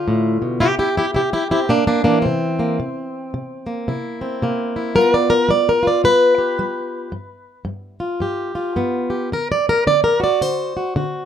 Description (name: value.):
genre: acoustic country blues, solo or duo.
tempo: 110 BPM.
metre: 4/4.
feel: swing 61% on 8ths.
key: G mixolydian.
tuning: A4 = 441 Hz.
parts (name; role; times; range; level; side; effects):
fingerpicked plugged-in swing-style acoustic guitar; solo; 0.0-11.3 s; G2 to D5; -16 LUFS; equal; none.
room: moderate studio reverb, RT60 0.5 s.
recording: close, detailed microphones.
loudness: -16 LUFS.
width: side -9 dB against mid.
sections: 0.0-11.3 A section.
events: steel-string acoustic guitar solo 0.0-11.3.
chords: 0.0 G7; 0.6 C7; 5.0 G7; 9.3 D7.